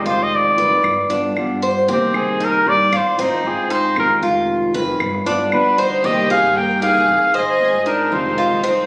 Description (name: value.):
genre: latin, Cuban son and guajira.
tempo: 115 BPM.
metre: 4/4.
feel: straight.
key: C minor.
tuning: A4 = 439 Hz.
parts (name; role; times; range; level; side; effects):
warm trumpet; melody; 0.0-8.9 s; Eb4 to G5; -19 LUFS; equal; none.
flamenco guitar; accompaniment; 0.0-8.9 s; C3 to G4; -27 LUFS; equal; none.
Cuban tres; arpeggios; 0.0-8.9 s; C4 to C5; -22 LUFS; equal; none.
upright bass; bass; 0.1-8.9 s; F1 to G2; -31 LUFS; equal; none.
claves; percussion; 0.8-5.8 s; none; -30 LUFS; equal; none.
rich chamber violin section; second line; 5.5-8.9 s; D4 to Bb4; -28 LUFS; equal; none.
room: moderate scoring stage reverb, RT60 1.8 s.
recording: recorded on a phone in the room, club reverb.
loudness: -17 LUFS.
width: mono.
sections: 0.0-6.0 A section; 6.0-8.9 B section.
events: trumpet solo 0.0-6.0.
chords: 0.0 Fm7; 0.8 G7; 1.9 Cm7; 2.9 Ab6; 4.0 Fm7; 5.0 G7; 6.0 Cm7; 7.1 Ab6; 8.1 Fm7.